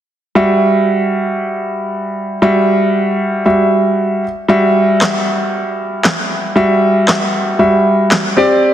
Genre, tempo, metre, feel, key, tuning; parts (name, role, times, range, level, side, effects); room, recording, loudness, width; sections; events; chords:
dance-pop; 116 BPM; 4/4; straight; E minor; A4 = 444 Hz
clear concert grand piano; accompaniment; 0.4-8.7 s; G3 to E5; -12 LUFS; equal
electronic handclaps and snare drum; drums; 5.0-8.2 s; -16 LUFS; equal
moderate lush hall reverb, RT60 2.0 s; heavily compressed radio sound, multiband compression; -11 LUFS; side -10 dB against mid
0.4-4.5 A section; 4.5-8.7 B section
0.4 Emadd9; 4.2 N.C.; 4.5 Emadd9